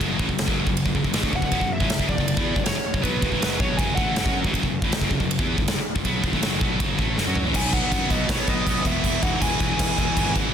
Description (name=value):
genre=heavy metal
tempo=159 BPM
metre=4/4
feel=straight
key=F# minor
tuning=A4 = 440 Hz
part: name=scooped high-gain guitar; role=riff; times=0.0-10.5 s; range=E2 to F#4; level=-26 LUFS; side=equal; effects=distortion
part: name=fuzz picked electric bass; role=bass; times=0.0-10.4 s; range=E1 to F#2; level=-28 LUFS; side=equal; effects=overdrive
part: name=big rock drum kit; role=drums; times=0.0-10.4 s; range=crash cymbal, kick drum, ride cymbal, snare drum, toms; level=-24 LUFS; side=equal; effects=soft clipping on snare
part: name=high-gain lead guitar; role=melody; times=1.4-4.3, 7.6-10.3 s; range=B4 to G#5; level=-28 LUFS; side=equal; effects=distortion
part: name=high-gain lead guitar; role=second line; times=7.5-10.3 s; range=F#3 to E4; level=-34 LUFS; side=right 2 dB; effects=distortion
part: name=clear symphonic string section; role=sustained chords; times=7.5-10.5 s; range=D#3 to B4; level=-37 LUFS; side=left 1 dB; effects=none
part: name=heavy high-gain guitar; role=riff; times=7.5-10.3 s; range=E2 to B3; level=-31 LUFS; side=left 1 dB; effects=distortion
room=little or no reverb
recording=dense, heavily limited modern master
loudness=-20 LUFS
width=side -8 dB against mid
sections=0.0-7.5 A section; 7.5-10.5 B section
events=drum fill 7.2-7.5; half time 7.5-10.5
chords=0.0 F#m; 7.5 B; 8.9 E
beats=| 0.01 0.39 0.77 1.14 | 1.52 1.90 2.27 2.65 | 3.03 3.41 3.78 4.16 | 4.54 4.91 5.29 5.67 | 6.04 6.42 6.79 7.17 | 7.54 7.92 8.29 8.67 | 9.04 9.42 9.79 10.16